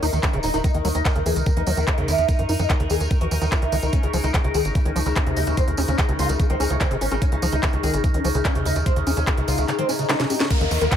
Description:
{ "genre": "psychedelic trance", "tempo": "146 BPM", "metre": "4/4", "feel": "straight", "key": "unclear", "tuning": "A4 = 440 Hz", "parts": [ { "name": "oud", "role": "melody", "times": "0.0-11.0 s", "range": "Db3 to Ab4", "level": "-26 LUFS", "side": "left 1 dB", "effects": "phaser, sidechain pumping, ping-pong delay" }, { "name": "overtone-sweeping drone", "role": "sustained chords", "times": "0.0-11.0 s", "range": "Eb4 to Bb4", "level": "-30 LUFS", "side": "left 3 dB", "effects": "chorus, built-in reverb, vintage 12-bit sampler grit, sidechain pumping" }, { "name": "liquid acid bass", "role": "riff", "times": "0.0-10.9 s", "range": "C3 to Eb4", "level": "-27 LUFS", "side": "equal", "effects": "chorus, auto-pan, sidechain pumping, digital delay" }, { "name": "tight sequencer bass", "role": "bass", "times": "0.0-10.9 s", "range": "Eb1 to Gb2", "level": "-24 LUFS", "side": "equal", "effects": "tube saturation" }, { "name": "drum and bass drum kit", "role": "drums", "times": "0.0-11.0 s", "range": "crash cymbal, handclaps, hi-hat, snare drum", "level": "-28 LUFS", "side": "equal", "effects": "none" }, { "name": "tambourine", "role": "percussion", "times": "0.0-11.0 s", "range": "none", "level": "-35 LUFS", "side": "right 4 dB", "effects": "none" }, { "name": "electronic kick drum", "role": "drums", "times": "0.2-11.0 s", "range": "none", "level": "-21 LUFS", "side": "equal", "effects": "none" }, { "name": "swell and downlifter", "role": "sound effects", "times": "9.8-11.0 s", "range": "none", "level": "-30 LUFS", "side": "equal", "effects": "none" } ], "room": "light reverb", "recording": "none", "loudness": "-19 LUFS", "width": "side -9 dB against mid", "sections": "0.0-10.5 A section", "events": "filter sweep on acid bass 0.0-10.5; swell 9.8-10.5; drum fill 10.1-10.5", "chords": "0.0 Eb5; 3.9 Db5", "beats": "0.23 | 0.64 1.05 1.46 1.88 | 2.29 2.70 3.11 3.52 | 3.93 4.34 4.75 5.16 | 5.57 5.98 6.39 6.81 | 7.22 7.63 8.04 8.45 | 8.86 9.27 9.68 10.09 | 10.51 10.92" }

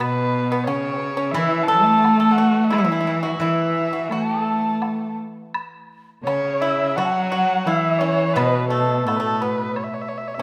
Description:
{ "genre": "chinese traditional, Chinese chamber ensemble", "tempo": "86 BPM", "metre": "4/4", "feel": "rubato", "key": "A gong mode", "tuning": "A4 = 440 Hz", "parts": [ { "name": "dark erhu", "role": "melody", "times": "0.0-10.4 s", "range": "A4 to A5", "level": "-26 LUFS", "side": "equal", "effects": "none" }, { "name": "clear cello", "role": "second line", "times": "0.0-10.4 s", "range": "A2 to A3", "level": "-24 LUFS", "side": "equal", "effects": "none" }, { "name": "pipa", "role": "second line", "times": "0.0-10.4 s", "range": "A3 to A4", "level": "-27 LUFS", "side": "equal", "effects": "none" }, { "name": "steel-string zither", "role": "accompaniment", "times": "0.0-10.4 s", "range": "B2 to E3", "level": "-32 LUFS", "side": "equal", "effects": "none" }, { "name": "woodblock", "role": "percussion", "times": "0.0-9.9 s", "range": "none", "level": "-35 LUFS", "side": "equal", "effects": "none" }, { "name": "mellow hollow xiao", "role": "second line", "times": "6.2-10.4 s", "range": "A4 to A5", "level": "-28 LUFS", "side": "equal", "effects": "none" } ], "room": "wet recital hall reverb, RT60 1.8 s", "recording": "none", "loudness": "-20 LUFS", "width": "mono", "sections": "0.0-5.5 A section; 5.5-10.4 B section", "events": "none", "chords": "none", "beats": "0.67 1.34 2.03 | 2.71 3.40 4.11 4.82 | 5.54 6.26 6.98 7.67 | 8.37 9.07 9.76" }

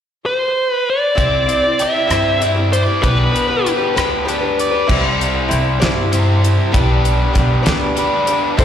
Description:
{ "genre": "folk rock and heartland rock", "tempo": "65 BPM (dotted quarters)", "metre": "6/8", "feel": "straight", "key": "unclear", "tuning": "A4 = 436 Hz", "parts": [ { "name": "bluesy overdriven lead guitar", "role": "melody", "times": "0.3-3.7 s", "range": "B4 to E5", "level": "-17 LUFS", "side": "equal", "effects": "distortion, slapback echo, analog delay" }, { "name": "picked old ladder-braced acoustic guitar", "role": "accompaniment", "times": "1.1-8.6 s", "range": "B3 to D5", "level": "-21 LUFS", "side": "left 4 dB", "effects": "slapback echo" }, { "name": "biting overdriven guitar", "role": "riff", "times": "1.2-8.6 s", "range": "C3 to D5", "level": "-19 LUFS", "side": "right 1 dB", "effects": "slapback echo" }, { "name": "upright bass", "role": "bass", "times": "1.2-8.6 s", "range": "B1 to G2", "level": "-18 LUFS", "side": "equal", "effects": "none" }, { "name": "damped 70s drum kit", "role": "drums", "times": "1.2-8.6 s", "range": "crash cymbal, hi-hat, kick drum, rim click, snare drum", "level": "-19 LUFS", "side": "equal", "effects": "none" } ], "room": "light reverb", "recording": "live gig heard through the venue's PA, recital hall reverb", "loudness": "-13 LUFS", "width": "side -9 dB against mid", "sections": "0.0-1.2 A section; 1.2-4.9 B section; 4.9-8.6 C section", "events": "none", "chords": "0.0 N.C.; 1.2 Cadd9; 3.0 G/B; 4.9 Cadd9; 6.7 G/B", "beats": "0.26 | 1.19 2.11 | 3.04 3.96 | 4.89 5.81 | 6.74 7.66 | 8.58" }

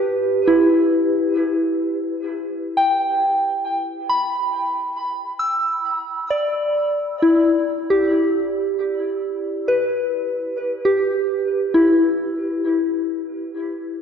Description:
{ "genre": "ambient", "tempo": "67 BPM", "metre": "4/4", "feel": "straight", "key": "unclear", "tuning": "A4 = 440 Hz", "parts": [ { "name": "soft synth bell", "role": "solo", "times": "0.0-14.0 s", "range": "E4 to E6", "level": "-18 LUFS", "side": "equal", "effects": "chorus, diffuse ambient delay" } ], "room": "wet lush hall reverb, RT60 2.5 s", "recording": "worn, warbling old tape, cassette tape, warbly pitch drift", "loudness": "-18 LUFS", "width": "side -7 dB against mid", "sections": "0.0-13.7 A section", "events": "none", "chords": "0.0 Em7", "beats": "0.38 1.27 2.16 | 3.05 3.93 4.81 5.69 | 6.57 7.46 8.35 9.24 | 10.13 11.02 11.92 12.83 | 13.74" }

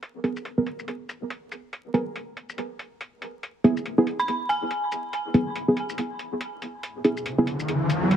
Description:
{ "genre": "deep dubstep", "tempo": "141 BPM", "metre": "4/4", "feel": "swing 59% on 16ths, half-time", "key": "unclear", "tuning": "A4 = 441 Hz", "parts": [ { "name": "electronic hi-hat and shaker", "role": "drums", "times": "0.0-8.2 s", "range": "none", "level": "-35 LUFS", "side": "equal", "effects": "overdrive, low-pass filter on hats, low-pass filter on perc" }, { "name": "filtered dub chord stab", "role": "stabs", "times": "0.2-7.5 s", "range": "B3 to A#4", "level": "-24 LUFS", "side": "right 1 dB", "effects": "chorus, dub echo" }, { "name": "dark detuned synth bell", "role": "melody", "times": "4.2-4.8 s", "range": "G#5 to B5", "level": "-29 LUFS", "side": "right 1 dB", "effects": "chorus, dub echo" }, { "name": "riser", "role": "sound effects", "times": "7.3-8.2 s", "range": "none", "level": "-23 LUFS", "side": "equal", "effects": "none" } ], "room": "moderate echo chamber reverb, RT60 1.4 s", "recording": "vinyl crackle", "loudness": "-24 LUFS", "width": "side -10 dB against mid", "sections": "0.0-8.2 A section", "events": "riser 7.3-8.2", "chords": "0.0 G#madd9; 3.4 E", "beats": "| 0.03 0.45 0.88 1.30 | 1.73 2.15 2.58 3.01 | 3.43 3.86 4.28 4.71 | 5.13 5.56 5.99 6.41 | 6.84 7.26 7.69 8.11" }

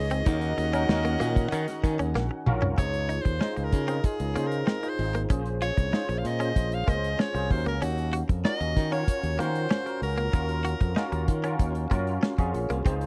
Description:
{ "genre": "polished 1980s jazz-funk pop", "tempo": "95 BPM", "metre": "4/4", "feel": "straight", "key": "Eb dorian", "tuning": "A4 = 444 Hz", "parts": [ { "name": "bright soprano saxophone", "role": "melody", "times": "0.0-11.6 s", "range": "Gb4 to F5", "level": "-35 LUFS", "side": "equal", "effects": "none" }, { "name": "barky tine electric piano", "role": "accompaniment", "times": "0.0-13.1 s", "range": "Db4 to Ab5", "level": "-35 LUFS", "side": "equal", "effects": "overdrive, ensemble chorus" }, { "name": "warm analog pad", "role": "sustained chords", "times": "0.0-2.8, 12.8-13.1 s", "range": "Db3 to Ab4", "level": "-41 LUFS", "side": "equal", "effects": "none" }, { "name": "modern bright fingered electric bass", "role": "bass", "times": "0.0-13.1 s", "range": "Ab1 to Eb3", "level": "-31 LUFS", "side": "equal", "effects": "none" }, { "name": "direct-recorded clean electric guitar", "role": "riff", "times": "0.1-13.0 s", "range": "Bb3 to Gb4", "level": "-36 LUFS", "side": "equal", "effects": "analog chorus" }, { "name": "modern studio drum kit", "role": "drums", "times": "0.1-13.1 s", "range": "hi-hat, kick drum, snare drum, toms", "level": "-28 LUFS", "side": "equal", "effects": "none" }, { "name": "warm horn section", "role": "second line", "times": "0.3-2.4 s", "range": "Db4 to Gb5", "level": "-39 LUFS", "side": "equal", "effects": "none" } ], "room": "little or no reverb", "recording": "dry, close 1970s-style studio recording", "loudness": "-27 LUFS", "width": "mono", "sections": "0.0-2.8 A section; 2.8-13.1 B section", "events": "tine electric piano fill 1.5-2.8; drum fill 2.2-2.8; soprano saxophone solo 2.8-13.1", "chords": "0.3 Ebm9; 2.8 Dbmaj9; 5.3 Bbm9; 7.5 Ebm9", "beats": "| 0.27 0.89 1.52 2.15 | 2.78 3.41 4.04 4.67 | 5.30 5.93 6.56 7.19 | 7.82 8.45 9.08 9.71 | 10.34 10.97 11.60 12.23 | 12.86" }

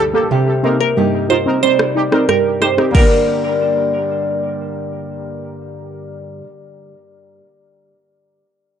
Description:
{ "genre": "dancehall", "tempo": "91 BPM", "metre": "4/4", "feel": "straight", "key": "G minor", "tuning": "A4 = 442 Hz", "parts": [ { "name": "synth brass stab", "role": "accompaniment", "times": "0.0-6.2 s", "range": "D2 to Bb4", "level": "-19 LUFS", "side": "right 2 dB", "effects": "chorus, sidechain pumping, analog delay" }, { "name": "nylon-string guitar", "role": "arpeggios", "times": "0.0-6.5 s", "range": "G2 to A4", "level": "-20 LUFS", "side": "left 3 dB", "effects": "analog delay" }, { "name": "downlifter", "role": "sound effects", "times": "0.0-2.9 s", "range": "none", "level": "barely audible", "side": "none", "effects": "none" }, { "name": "glassy wavetable pluck", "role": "melody", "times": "0.8-4.9 s", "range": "Bb4 to C5", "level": "-18 LUFS", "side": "right 4 dB", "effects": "chorus, analog delay" }, { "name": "afro-pop drum kit", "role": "drums", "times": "1.8-3.1 s", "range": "crash cymbal, kick drum, rim click", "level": "-17 LUFS", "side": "equal", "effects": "analog delay" } ], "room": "moderate spring reverb, RT60 1.6 s, digital ambience", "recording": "echo-heavy mix, nothing above 10.6 kHz", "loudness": "-13 LUFS", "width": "side -8 dB against mid", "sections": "0.0-2.9 A section; 2.9-5.6 B section", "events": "none", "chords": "0.3 Cm7; 2.9 Gm", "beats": "| 0.31 0.97 1.63 2.29 | 2.95 3.61 4.26 4.92" }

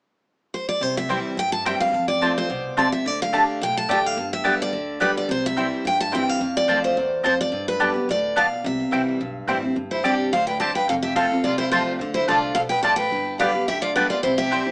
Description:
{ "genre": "bluegrass", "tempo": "214 BPM", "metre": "4/4", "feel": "straight", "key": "C major", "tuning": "A4 = 440 Hz", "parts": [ { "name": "picked steel-string acoustic guitar", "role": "melody", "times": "0.5-14.7 s", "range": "B4 to A5", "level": "-26 LUFS", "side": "equal", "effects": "plate reverb, tape echo" }, { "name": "picked steel-string acoustic guitar", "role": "accompaniment", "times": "0.8-14.7 s", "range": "E2 to G4", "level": "-29 LUFS", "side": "equal", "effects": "none" }, { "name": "upright bass", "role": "bass", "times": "0.8-14.6 s", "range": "F1 to G2", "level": "-41 LUFS", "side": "equal", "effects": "none" }, { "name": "mandolin", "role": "stabs", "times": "1.1-14.6 s", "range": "A3 to A5", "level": "-24 LUFS", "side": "equal", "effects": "none" }, { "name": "clear fiddle", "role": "second line", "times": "9.9-14.7 s", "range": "D4 to D5", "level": "-30 LUFS", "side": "equal", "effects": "none" } ], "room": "moderate studio reverb, RT60 0.5 s", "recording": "small speaker sound", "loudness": "-22 LUFS", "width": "mono", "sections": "0.8-14.7 A section", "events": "none", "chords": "0.0 N.C.; 0.8 C; 1.9 F; 3.1 Dsus4; 4.2 G; 5.3 C; 6.4 F; 7.5 Gadd9; 8.6 C; 9.8 Gsus4; 10.9 F; 12.0 Dm; 13.1 G", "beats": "0.25 0.53 | 0.81 1.09 1.37 1.65 | 1.93 2.21 2.49 2.77 | 3.05 3.33 3.61 3.89 | 4.17 4.45 4.73 5.01 | 5.29 5.57 5.85 6.13 | 6.41 6.69 6.97 7.25 | 7.53 7.81 8.09 8.37 | 8.64 8.93 9.20 9.48 | 9.76 10.04 10.32 10.60 | 10.88 11.16 11.44 11.72 | 12.00 12.28 12.56 12.84 | 13.12 13.40 13.68 13.96 | 14.24 14.52" }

